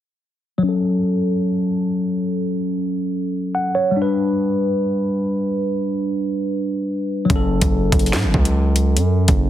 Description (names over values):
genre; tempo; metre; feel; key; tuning
hip hop, drill; 144 BPM; 4/4; half-time; F# phrygian; A4 = 440 Hz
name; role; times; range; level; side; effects
mellow tine electric piano; accompaniment; 0.6-9.5 s; F#3 to F#5; -19 LUFS; left 1 dB; phaser, low-pass filter
distorted 808-style bass; bass; 7.3-9.5 s; F#1 to A2; -18 LUFS; equal; distortion
drill drum kit; drums; 7.3-9.4 s; handclaps, hi-hat, kick drum, snare drum; -18 LUFS; equal; none
room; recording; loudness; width
light reverb, digital ambience; heavily compressed radio sound, multiband compression; -17 LUFS; side -12 dB against mid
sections
0.6-7.3 A section; 7.3-9.5 B section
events
filter sweep on tine electric piano 0.6-7.3; tine electric piano fill 3.3-4.0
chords
0.6 F#m; 4.0 G; 7.3 F#m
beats
| 0.63 1.05 1.47 1.88 | 2.30 2.71 3.13 3.55 | 3.96 4.38 4.80 5.21 | 5.63 6.05 6.46 6.88 | 7.30 7.71 8.13 8.55 | 8.96 9.38